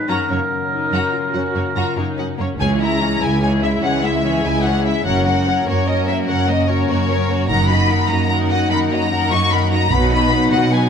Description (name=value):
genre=cinematic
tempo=98 BPM (dotted quarters)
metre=12/8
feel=straight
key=C# dorian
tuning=A4 = 440 Hz
part: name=warm oboe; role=second line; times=0.0-1.9 s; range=A#4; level=-23 LUFS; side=right 1 dB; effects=none
part: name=mellow French horn section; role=sustained chords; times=0.0-10.9 s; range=F#3 to A#4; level=-24 LUFS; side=left 3 dB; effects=none
part: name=concert harp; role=arpeggios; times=0.0-10.9 s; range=F#2 to D#5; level=-28 LUFS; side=left 9 dB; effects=none
part: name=warm symphonic violin section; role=melody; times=0.1-10.9 s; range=C#5 to C#6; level=-21 LUFS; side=left 4 dB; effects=none
part: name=rich symphonic violin section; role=second line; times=0.1-10.9 s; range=A#3 to F#5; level=-25 LUFS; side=left 3 dB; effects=none
part: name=rich symphonic viola section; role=accompaniment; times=0.1-10.9 s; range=D#3 to F#4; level=-26 LUFS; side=right 2 dB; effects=none
part: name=rich symphonic cello section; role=bass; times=0.1-10.9 s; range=C#2 to B2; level=-20 LUFS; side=right 3 dB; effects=none
part: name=rich symphonic double bass section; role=bass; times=2.6-10.3 s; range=F#1 to C#2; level=-22 LUFS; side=right 3 dB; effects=none
room=moderate concert hall reverb, RT60 1.9 s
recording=none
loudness=-15 LUFS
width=side -7 dB against mid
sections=0.0-2.6 A section; 2.6-10.9 B section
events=none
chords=0.1 F#; 2.6 C#m; 5.1 F#; 7.5 D#m/F#; 9.9 B